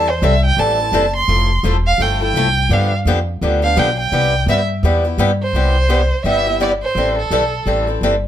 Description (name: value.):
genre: acoustic string swing (jazz manouche).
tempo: 169 BPM.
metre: 4/4.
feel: swing 60% on 8ths.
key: C major.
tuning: A4 = 440 Hz.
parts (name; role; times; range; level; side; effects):
warm violin; melody; 0.0-7.8 s; A4 to C6; -18 LUFS; right 3 dB; plate reverb.
picked swing-style acoustic guitar; accompaniment; 0.0-8.1 s; C3 to A4; -18 LUFS; left 2 dB; none.
upright bass; bass; 0.0-8.3 s; E1 to G2; -18 LUFS; equal; none.
room: moderate small room ambience, RT60 0.5 s.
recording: none.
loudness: -14 LUFS.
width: side -11 dB against mid.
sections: 0.0-5.5 A section; 5.5-8.3 B section.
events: violin solo 0.0-5.5.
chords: 0.0 Am7; 1.3 Fmaj9; 2.7 G7; 4.1 Cmaj7; 7.0 Am9.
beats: 0.23 0.58 0.94 | 1.29 1.65 2.00 2.36 | 2.71 3.07 3.42 3.77 | 4.13 4.48 4.84 5.19 | 5.55 5.90 6.26 6.61 | 6.96 7.32 7.67 8.03.